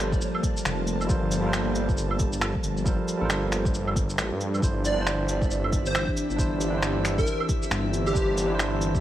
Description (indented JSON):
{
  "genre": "future garage",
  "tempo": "136 BPM",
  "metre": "4/4",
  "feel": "swing 60% on 16ths",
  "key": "G dorian",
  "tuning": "A4 = 440 Hz",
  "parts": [
    { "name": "barky tine electric piano", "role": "accompaniment", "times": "0.0-9.0 s", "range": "G3 to C5", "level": "-31 LUFS", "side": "right 3 dB", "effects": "sidechain pumping, tape echo" },
    { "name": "ethereal airy pad", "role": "sustained chords", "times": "0.0-9.0 s", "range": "E3 to A5", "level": "-32 LUFS", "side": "left 1 dB", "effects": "ensemble chorus, built-in reverb, sidechain pumping" },
    { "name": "swelling detuned saw bass", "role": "bass", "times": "0.0-9.0 s", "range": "F1 to G2", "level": "-28 LUFS", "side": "equal", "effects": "sidechain pumping" },
    { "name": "electronic kick drum", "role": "drums", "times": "0.1-9.0 s", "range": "none", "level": "-27 LUFS", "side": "equal", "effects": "overdrive, studio ambience" },
    { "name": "electronic shaker, claves, cabasa and finger snaps", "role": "drums", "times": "0.1-9.0 s", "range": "none", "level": "-31 LUFS", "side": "right 1 dB", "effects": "studio ambience" },
    { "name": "drifting glass-harmonics texture", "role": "texture", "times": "5.2-9.0 s", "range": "E5", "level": "-39 LUFS", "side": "left 2 dB", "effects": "chorus, built-in reverb" },
    { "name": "plucky unison lead", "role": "melody", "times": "4.9-8.5 s", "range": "G4 to D5", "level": "-31 LUFS", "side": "right 1 dB", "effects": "ensemble chorus, cassette tape, dub echo" }
  ],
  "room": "light reverb",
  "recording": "vinyl crackle",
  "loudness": "-23 LUFS",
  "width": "side -12 dB against mid",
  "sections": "0.0-9.0 A section",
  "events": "none",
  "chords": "0.0 Gm11; 4.6 Cadd9/G",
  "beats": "0.21 0.65 | 1.09 1.53 1.97 2.42 | 2.86 3.30 3.74 4.18 | 4.62 5.06 5.50 5.95 | 6.39 6.83 7.27 7.71 | 8.15 8.59"
}